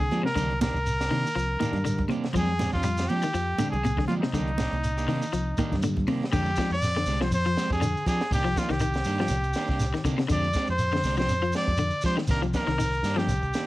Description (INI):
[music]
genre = afrobeat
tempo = 121 BPM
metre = 4/4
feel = swing 55% on 16ths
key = F dorian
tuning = A4 = 441 Hz
[part]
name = brilliant trumpet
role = melody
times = 0.0-13.7 s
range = Eb4 to D5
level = -29 LUFS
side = equal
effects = cassette tape
[part]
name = electric guitar at the edge of break-up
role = arpeggios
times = 0.0-13.4 s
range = C3 to G3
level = -30 LUFS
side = left 4 dB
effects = cassette tape
[part]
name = fingered electric bass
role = bass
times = 0.0-13.5 s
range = C2 to F3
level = -29 LUFS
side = equal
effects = none
[part]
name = compact cocktail drum kit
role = drums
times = 0.0-13.7 s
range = crash cymbal, hi-hat, kick drum, snare drum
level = -32 LUFS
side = equal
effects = cassette tape
[part]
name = electric guitar at the edge of break-up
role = stabs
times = 0.1-13.7 s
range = Eb3 to G4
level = -35 LUFS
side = right 4 dB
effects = cassette tape
[part]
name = congas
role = percussion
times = 0.1-6.2 s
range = none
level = -32 LUFS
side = right 4 dB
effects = none
[part]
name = shekere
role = percussion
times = 0.1-13.7 s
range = none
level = -34 LUFS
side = right 1 dB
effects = none
[sound]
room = studio ambience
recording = home recording on cassette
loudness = -24 LUFS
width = side -17 dB against mid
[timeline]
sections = 0.0-6.3 A section; 6.3-13.7 B section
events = none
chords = 0.4 Cm9; 2.3 Fm69; 4.3 Cm9; 6.3 Fm69; 8.3 Cm9; 10.3 Fm69; 12.3 Cm9